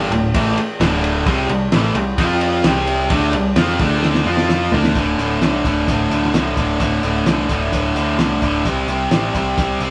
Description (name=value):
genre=classic rock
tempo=130 BPM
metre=4/4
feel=straight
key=D minor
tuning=A4 = 442 Hz
part: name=overdriven electric guitar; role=riff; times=0.0-9.9 s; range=D2 to F4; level=-22 LUFS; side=equal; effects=none
part: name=raw garage guitar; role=riff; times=0.0-9.9 s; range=D2 to F4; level=-24 LUFS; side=equal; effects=overdrive
part: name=growling picked electric bass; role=bass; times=0.0-9.9 s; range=D1 to F2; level=-26 LUFS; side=equal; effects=overdrive
part: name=cloth-damped thuddy drum kit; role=drums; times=0.1-9.9 s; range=hi-hat, kick drum, ride cymbal, snare drum, toms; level=-22 LUFS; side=equal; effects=none
room=moderate studio reverb, RT60 0.5 s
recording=band playing live in one room, nothing above 10.7 kHz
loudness=-17 LUFS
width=mono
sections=0.0-5.0 A section; 5.0-9.9 B section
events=drum fill 4.0-5.0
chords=0.0 D5; 1.3 C5; 2.2 F5; 2.6 C5; 3.8 D5; 4.3 F5; 4.7 D5; 8.7 C5